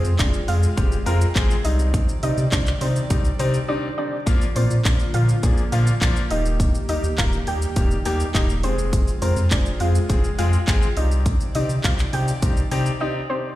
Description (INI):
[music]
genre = dance-pop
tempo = 103 BPM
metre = 4/4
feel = straight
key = unclear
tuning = A4 = 440 Hz
[part]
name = soft round pluck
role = melody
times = 0.0-13.4 s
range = C4 to G5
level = -29 LUFS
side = right 1 dB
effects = chorus, sidechain pumping, ping-pong delay
[part]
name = warm concert grand piano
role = accompaniment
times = 0.0-13.5 s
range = F3 to Bb4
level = -28 LUFS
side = left 4 dB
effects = sidechain pumping
[part]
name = airy breathy pad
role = sustained chords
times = 0.0-13.6 s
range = C3 to D5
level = -32 LUFS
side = right 1 dB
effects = chorus, sidechain pumping
[part]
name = warm sub bass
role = bass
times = 0.0-12.9 s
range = Eb1 to C3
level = -21 LUFS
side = equal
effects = sidechain pumping
[part]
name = pop drum kit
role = drums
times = 0.0-13.0 s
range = handclaps, hi-hat, kick drum, shaker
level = -22 LUFS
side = equal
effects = none
[sound]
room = little or no reverb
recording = played on a big sound system in a bare room, large studio reverb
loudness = -18 LUFS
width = side -15 dB against mid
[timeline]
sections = 0.0-13.6 A section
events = break 3.7-4.3, 13.0-13.6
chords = 0.0 Fm; 1.6 Cmadd9; 4.3 Bb; 6.3 Eb; 8.6 Fm; 11.0 Cmadd9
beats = 0.19 0.77 1.36 | 1.94 2.52 3.10 3.69 | 4.27 4.85 5.43 6.02 | 6.60 7.18 7.76 8.35 | 8.93 9.51 10.09 10.68 | 11.26 11.84 12.42 13.01